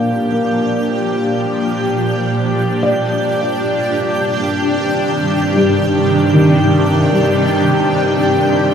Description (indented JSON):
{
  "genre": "ambient",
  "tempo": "77 BPM",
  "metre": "4/4",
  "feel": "straight",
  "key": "unclear",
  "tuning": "A4 = 440 Hz",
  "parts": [
    { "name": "shimmering ambient pad", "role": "sustained chords", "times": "0.0-8.7 s", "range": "G2 to G4", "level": "-15 LUFS", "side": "equal", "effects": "chorus, built-in reverb, phaser, shimmer reverb" },
    { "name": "felt-muted upright piano", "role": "arpeggios", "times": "0.0-8.7 s", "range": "Eb3 to F5", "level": "-18 LUFS", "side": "left 1 dB", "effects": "tape echo, shimmer reverb" },
    { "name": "pedal harmonium", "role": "drone", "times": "0.0-8.7 s", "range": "G3 to G4", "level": "-22 LUFS", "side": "equal", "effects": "none" },
    { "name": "twinkling granular texture", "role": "texture", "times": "0.0-8.7 s", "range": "G6", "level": "-27 LUFS", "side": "right 3 dB", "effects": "built-in reverb, shimmer reverb" }
  ],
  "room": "wet huge ambient reverb, RT60 7.8 s",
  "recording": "in a vast, echoing space",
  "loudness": "-13 LUFS",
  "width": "side -7 dB against mid",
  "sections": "0.0-8.7 A section",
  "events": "fade-in on ambient pad 0.0-8.7; fade-in on harmonium 0.0-8.7; fade-in on synth texture 0.0-8.7",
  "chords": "0.0 Gm7; 2.8 Cmadd9/G",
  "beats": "0.49 1.27 2.05 | 2.83 3.61 4.39 5.17 | 5.95 6.73 7.51 8.29"
}